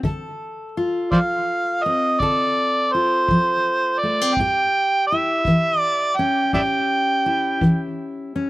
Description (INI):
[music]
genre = acoustic country blues, solo or duo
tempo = 55 BPM (dotted quarters)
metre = 12/8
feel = straight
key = unclear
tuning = A4 = 440 Hz
[part]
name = fingerpicked steel-string acoustic guitar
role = accompaniment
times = 0.0-8.5 s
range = A2 to A4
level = -23 LUFS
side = left 1 dB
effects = slapback echo
[part]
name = kick drum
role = drums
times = 0.0-7.8 s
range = none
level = -29 LUFS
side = equal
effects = none
[part]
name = overdriven harmonica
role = melody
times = 1.1-7.9 s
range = C5 to G5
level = -18 LUFS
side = right 2 dB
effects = slapback echo
[sound]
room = little or no reverb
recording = recorded outdoors, with no room sound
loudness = -17 LUFS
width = side -18 dB against mid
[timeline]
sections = 0.0-8.5 A section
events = none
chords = 0.0 Dm7; 4.4 A7